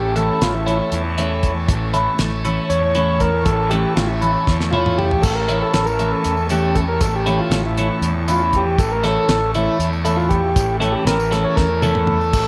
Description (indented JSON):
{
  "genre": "psychedelic rock",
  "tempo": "237 BPM (eighths)",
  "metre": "7/8",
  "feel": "straight",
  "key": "A major",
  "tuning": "A4 = 440 Hz",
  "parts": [
    { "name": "combo organ", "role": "melody", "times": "0.0-12.5 s", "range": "E4 to C#5", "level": "-23 LUFS", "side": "equal", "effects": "spring reverb, tape echo" },
    { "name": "dark chamber string section", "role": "sustained chords", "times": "0.0-12.5 s", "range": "C#5 to C#6", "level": "-34 LUFS", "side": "equal", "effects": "none" },
    { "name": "fuzz fingered electric bass", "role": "bass", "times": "0.0-12.5 s", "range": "A1 to E2", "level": "-24 LUFS", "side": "equal", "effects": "overdrive" },
    { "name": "tanpura", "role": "drone", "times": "0.0-12.5 s", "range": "A2 to C#4", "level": "-32 LUFS", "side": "equal", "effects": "none" },
    { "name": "twelve-string electric guitar", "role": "riff", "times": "0.2-12.2 s", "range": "E3 to E4", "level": "-23 LUFS", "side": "equal", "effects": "phaser" },
    { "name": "damped 70s drum kit", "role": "drums", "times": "0.2-12.5 s", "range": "crash cymbal, hi-hat, kick drum, snare drum, toms", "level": "-24 LUFS", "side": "equal", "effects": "none" },
    { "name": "tambourine", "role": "percussion", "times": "5.2-12.5 s", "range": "none", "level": "-40 LUFS", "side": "equal", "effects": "none" }
  ],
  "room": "light reverb, studio ambience",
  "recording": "none",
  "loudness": "-18 LUFS",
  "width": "mono",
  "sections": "0.0-12.5 A section",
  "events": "transistor combo organ solo 0.0-12.5; drum fill 4.5-5.2, 11.6-12.3",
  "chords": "0.0 A"
}